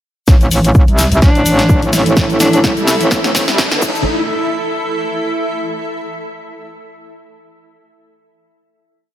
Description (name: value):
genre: bass house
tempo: 127 BPM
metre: 4/4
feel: swing 56% on 16ths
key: A minor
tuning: A4 = 440 Hz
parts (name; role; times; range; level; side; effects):
- sweeping resonant pad; sustained chords; 0.3-4.0 s; A3 to A4; -24 LUFS; right 3 dB; chorus, sidechain pumping
- metallic wobble bass; bass; 0.3-4.0 s; G1 to C2; -14 LUFS; equal; chorus, tube saturation, sidechain pumping
- electronic kick drum; drums; 0.3-3.9 s; none; -12 LUFS; equal; small room ambience
- house drum kit; drums; 0.3-3.9 s; crash cymbal, hi-hat, snare drum; -18 LUFS; equal; small room ambience
- tube shaker; percussion; 0.3-4.0 s; none; -24 LUFS; left 3 dB; none
- riser; sound effects; 2.3-4.1 s; none; -24 LUFS; left 2 dB; none
- granular cloud pad; texture; 1.8-5.9 s; E4 to E5; -20 LUFS; equal; built-in reverb, sidechain pumping
- breathy alto saxophone; melody; 1.2-2.6 s; D4; -18 LUFS; left 1 dB; digital delay
room: light reverb, digital ambience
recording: high-pass filter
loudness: -11 LUFS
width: side -12 dB against mid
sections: 0.3-4.1 build; 4.1-5.9 final note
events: build-up 0.3-4.1; drum fill 0.3-4.1; filter sweep on analog synth pad 0.3-4.1; filter sweep 0.3-4.1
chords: 0.3 A5